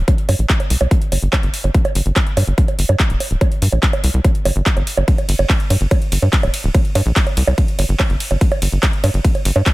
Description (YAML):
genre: psychedelic trance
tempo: 144 BPM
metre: 4/4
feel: straight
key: G minor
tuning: A4 = 441 Hz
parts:
  - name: tight sequencer bass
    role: bass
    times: 0.0-9.6 s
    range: D1 to G2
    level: -16 LUFS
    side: equal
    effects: none
  - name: big-room dance drum kit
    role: drums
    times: 0.1-9.7 s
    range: bongos, handclaps, hi-hat, ride cymbal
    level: -20 LUFS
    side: right 2 dB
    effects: none
  - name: electronic kick drum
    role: drums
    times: 0.1-9.7 s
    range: none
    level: -16 LUFS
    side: equal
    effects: none
room: little or no reverb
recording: none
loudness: -14 LUFS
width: side -19 dB against mid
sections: 0.0-9.7 A section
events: none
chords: none